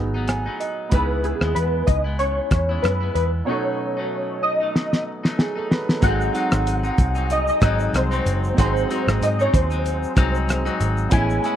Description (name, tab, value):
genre	indie pop, bedroom pop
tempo	94 BPM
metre	4/4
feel	swing 55% on 16ths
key	unclear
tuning	A4 = 440 Hz
part	clean electric guitar	accompaniment	0.0-11.6 s	G#2 to E4	-28 LUFS	left 3 dB	lush chorus, warbly pitch drift
part	warm upright piano	accompaniment	0.0-11.6 s	B2 to G#5	-29 LUFS	right 5 dB	none
part	vintage muted picked electric bass	bass	0.0-11.4 s	F#1 to G#2	-23 LUFS	equal	none
part	cloth-damped thuddy drum kit	drums	0.3-11.6 s	hi-hat, kick drum, rim click, shaker, snare drum	-20 LUFS	equal	none
part	warbly lo-fi synth keys	melody	0.9-11.6 s	G#4 to G#5	-23 LUFS	equal	ensemble chorus, slapback echo
room	small room ambience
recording	dry, close 1970s-style studio recording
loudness	-18 LUFS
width	side -10 dB against mid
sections	0.0-6.0 A section; 6.0-11.6 B section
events	upright piano fill 0.0-0.9; drum fill 4.7-6.0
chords	0.0 G#m7; 0.9 C#m7; 3.5 B7; 6.0 G#7